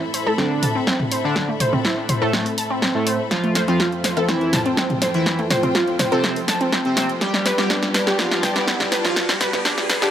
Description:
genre	melodic techno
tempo	123 BPM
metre	4/4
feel	straight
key	unclear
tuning	A4 = 440 Hz
part	dark analog pad	sustained chords	0.0-10.1 s	F3 to E5	-31 LUFS	equal	chorus, sidechain pumping
part	bright symphonic string section	texture	0.0-10.1 s	F4 to B5	-30 LUFS	left 2 dB	sidechain pumping
part	wide unison pluck	arpeggios	0.1-10.1 s	G3 to A5	-23 LUFS	right 1 dB	sidechain pumping, analog delay
part	deep house drum kit	drums	0.1-10.1 s	hi-hat, snare drum, toms	-22 LUFS	equal	none
part	filtered dub chord stab	stabs	0.3-10.1 s	F3 to A4	-29 LUFS	left 3 dB	none
part	resonant sweep polysynth	melody	0.4-10.1 s	A2 to G4	-25 LUFS	right 1 dB	chorus, sidechain pumping, tape echo
part	electronic kick drum	drums	0.4-9.8 s	none	-33 LUFS	equal	none
part	riser	sound effects	4.7-10.1 s	none	-31 LUFS	equal	none
room	light reverb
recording	dry, gritty hardware recording, high-pass filter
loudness	-17 LUFS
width	side -10 dB against mid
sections	0.0-10.1 A section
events	build-up 0.0-10.1; drum fill 0.0-10.1; filter sweep on analog synth pad 0.0-10.1; filter sweep 0.0-10.1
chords	0.0 Am; 3.3 F; 7.2 G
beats	0.38 0.87 | 1.36 1.85 2.33 2.82 | 3.31 3.80 4.29 4.77 | 5.26 5.75 6.24 6.72 | 7.21 7.70 8.19 8.68 | 9.16 9.65

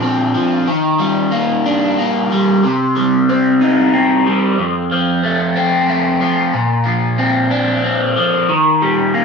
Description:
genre	rock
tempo	61 BPM (dotted quarters)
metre	6/8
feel	straight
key	unclear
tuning	A4 = 439 Hz
part	crunchy overdriven guitar	solo	0.0-9.2 s	F2 to Eb4	-12 LUFS	equal	phaser
room	moderate small room reverb, RT60 0.5 s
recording	band playing live in one room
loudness	-12 LUFS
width	side -5 dB against mid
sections	0.0-9.2 A section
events	none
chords	0.0 Bbadd9; 0.7 Ebmaj7; 2.6 Cm; 4.6 F; 6.5 Bbadd9; 8.5 Eb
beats	| 0.67 1.65 | 2.63 3.61 | 4.58 5.56 | 6.54 7.51 | 8.49

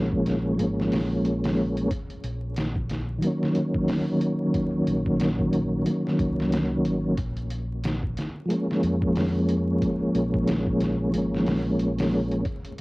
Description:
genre	trip hop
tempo	91 BPM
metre	4/4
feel	swing 58% on 16ths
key	Bb minor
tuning	A4 = 440 Hz
part	mellow tonewheel organ	accompaniment	0.0-12.5 s	Eb3 to Db4	-23 LUFS	equal	chorus vibrato, fast rotary speaker, tremolo, cassette tape
part	deep dub fingered electric bass	bass	0.0-12.4 s	Ab1 to F2	-31 LUFS	equal	none
part	trip hop sampler-style drum kit	drums	0.1-12.8 s	hi-hat, kick drum, snare drum	-31 LUFS	equal	overdrive, vintage 12-bit sampler grit
room	light reverb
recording	home recording on cassette, vinyl crackle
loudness	-22 LUFS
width	side -23 dB against mid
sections	0.0-12.8 A section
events	none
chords	0.0 Bbm7; 1.9 Ebm7/Bb; 7.2 Bbm7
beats	0.59 1.25 | 1.91 2.57 3.23 3.88 | 4.54 5.20 5.86 6.52 | 7.18 7.84 8.50 9.16 | 9.82 10.48 11.14 11.80 | 12.46

